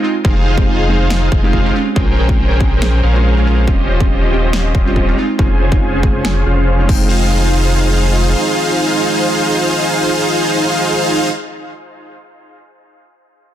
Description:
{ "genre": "future bass", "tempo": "140 BPM", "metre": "4/4", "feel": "swing 53% on 16ths, half-time", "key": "F minor", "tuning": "A4 = 444 Hz", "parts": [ { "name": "glassy digital keys", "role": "accompaniment", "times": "0.0-11.4 s", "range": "G3 to G5", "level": "-21 LUFS", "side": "right 3 dB", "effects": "chorus, sidechain pumping, dub echo" }, { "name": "dense compressed supersaw", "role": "riff", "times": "0.2-11.3 s", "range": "Db4 to Ab5", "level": "-16 LUFS", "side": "equal", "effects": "sidechain pumping, low-pass filter, dub echo" }, { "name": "saturated sub bass", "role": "bass", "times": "0.2-8.3 s", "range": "Eb1 to Bb1", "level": "-15 LUFS", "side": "equal", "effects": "sidechain pumping" }, { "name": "electronic kick drum", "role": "drums", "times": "0.2-7.0 s", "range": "none", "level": "-15 LUFS", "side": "equal", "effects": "overdrive" }, { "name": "big-room dance drum kit", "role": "drums", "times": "1.1-7.0 s", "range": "crash cymbal, finger snaps, snare drum", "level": "-22 LUFS", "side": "equal", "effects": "overdrive" } ], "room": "light reverb", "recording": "dense, heavily limited modern master", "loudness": "-11 LUFS", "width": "side -11 dB against mid", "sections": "0.0-7.1 A section; 7.1-10.5 B section", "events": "filter sweep on supersaw synth 0.0-7.1", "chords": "0.2 Fm7; 1.7 Bbm9; 3.7 Eb13; 5.2 Dbmaj7/F; 6.9 Fm7", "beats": "| 0.25 0.68 1.10 1.53 | 1.96 2.39 2.82 3.25 | 3.68 4.11 4.53 4.96 | 5.39 5.82 6.25 6.68 | 7.11 7.53 7.96 8.39 | 8.82 9.25 9.68 10.11" }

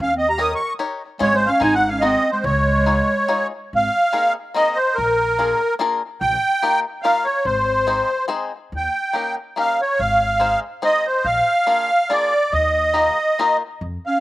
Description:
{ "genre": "musette waltz", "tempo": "143 BPM", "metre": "3/4", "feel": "straight", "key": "Db major, Ab major from 3.7 s", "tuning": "A4 = 440 Hz", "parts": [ { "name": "musette accordion", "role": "melody", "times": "0.0-14.2 s", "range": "Bb4 to Eb6", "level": "-17 LUFS", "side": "right 1 dB", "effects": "slapback echo" }, { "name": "breathy clarinet", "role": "second line", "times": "0.0-3.5, 14.1-14.2 s", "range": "Ab3 to Bb4", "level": "-22 LUFS", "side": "right 2 dB", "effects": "slapback echo" }, { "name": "upright bass", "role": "bass", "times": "0.0-14.0 s", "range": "Ab1 to F2", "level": "-26 LUFS", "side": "equal", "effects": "none" }, { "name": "bluegrass banjo", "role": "accompaniment", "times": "0.4-13.6 s", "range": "Ab3 to Db5", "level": "-23 LUFS", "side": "left 4 dB", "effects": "slapback echo" } ], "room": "little or no reverb", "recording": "recorded outdoors, with no room sound", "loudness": "-16 LUFS", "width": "side -16 dB against mid", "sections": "0.0-3.7 A section; 3.7-14.2 B section", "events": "none", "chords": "0.0 Eb7; 1.2 Db/Ab; 1.6 Ab7; 2.5 Dbadd9; 3.7 Abadd9; 5.0 Bb7; 6.2 Ebadd9/Bb; 7.5 Ab; 8.7 Eb7; 10.0 Ab; 11.3 Bb7; 12.5 Ebadd9", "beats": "0.39 0.80 | 1.21 1.63 2.04 | 2.45 2.87 3.29 | 3.71 4.13 4.55 | 4.97 5.38 5.79 | 6.21 6.62 7.04 | 7.45 7.87 8.30 | 8.72 9.15 9.57 | 9.99 10.41 10.83 | 11.25 11.68 12.10 | 12.53 12.96 13.38 | 13.82" }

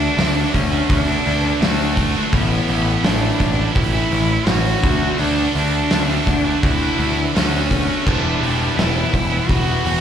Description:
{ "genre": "quiet-loud alternative rock", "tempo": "84 BPM", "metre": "4/4", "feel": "straight", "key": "unclear", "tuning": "A4 = 439 Hz", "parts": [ { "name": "clear cello", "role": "melody", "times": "0.0-10.0 s", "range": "A3 to F#4", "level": "-22 LUFS", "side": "right 1 dB", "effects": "none" }, { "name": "heavy high-gain guitar", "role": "riff", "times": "0.0-10.0 s", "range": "A2 to F#4", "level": "-25 LUFS", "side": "right 12 dB", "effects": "distortion, slapback echo" }, { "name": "high-gain distorted guitar", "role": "riff", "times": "0.0-10.0 s", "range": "A2 to F#4", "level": "-28 LUFS", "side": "equal", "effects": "none" }, { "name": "sludgy distorted guitar", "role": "riff", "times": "0.0-10.0 s", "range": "A2 to F#4", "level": "-25 LUFS", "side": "left 11 dB", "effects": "overdrive, slapback echo" }, { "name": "growling picked electric bass", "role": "bass", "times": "0.0-10.0 s", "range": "E1 to D2", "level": "-21 LUFS", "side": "equal", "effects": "overdrive" }, { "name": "oversized low-tuned drum kit", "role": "drums", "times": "0.2-10.0 s", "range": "crash cymbal, hi-hat, kick drum, snare drum", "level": "-21 LUFS", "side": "equal", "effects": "none" } ], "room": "studio reverb", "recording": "live gig heard through the venue's PA, club reverb", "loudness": "-15 LUFS", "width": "side -8 dB against mid", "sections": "0.0-10.0 A section", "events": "none", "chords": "0.0 D; 2.3 Aadd9; 4.8 D; 8.1 Em", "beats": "0.18 0.89 1.61 | 2.33 3.05 3.76 4.48 | 5.20 5.91 6.63 7.35 | 8.06 8.78 9.49" }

